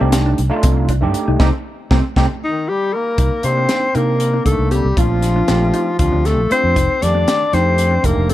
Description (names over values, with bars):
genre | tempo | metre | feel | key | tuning
electric jazz fusion | 235 BPM (eighths) | 7/8 | straight | C dorian | A4 = 440 Hz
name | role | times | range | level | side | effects
overdriven tine electric piano | accompaniment | 0.0-8.3 s | Eb3 to Bb4 | -22 LUFS | right 3 dB | analog chorus
mellow electric guitar | stabs | 0.0-8.3 s | A3 to F4 | -25 LUFS | left 2 dB | wide subtle chorus
fingered electric bass | bass | 0.0-8.3 s | F1 to C3 | -17 LUFS | equal | none
crisp fusion drum kit | drums | 0.1-8.3 s | hi-hat, kick drum, snare drum | -19 LUFS | equal | none
mellow alto saxophone | melody | 2.4-8.3 s | Eb4 to D5 | -18 LUFS | left 2 dB | none
clear bass clarinet | second line | 2.5-8.3 s | Eb3 to D4 | -24 LUFS | left 3 dB | analog delay
room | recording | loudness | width
little or no reverb | dark, warm production | -14 LUFS | side -14 dB against mid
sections
0.0-3.2 A section; 3.2-8.3 B section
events
band accent 1.4-3.2; drum fill 2.8-3.2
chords
0.0 Cm69; 3.2 Cm7; 5.0 Bbmaj9; 6.8 F13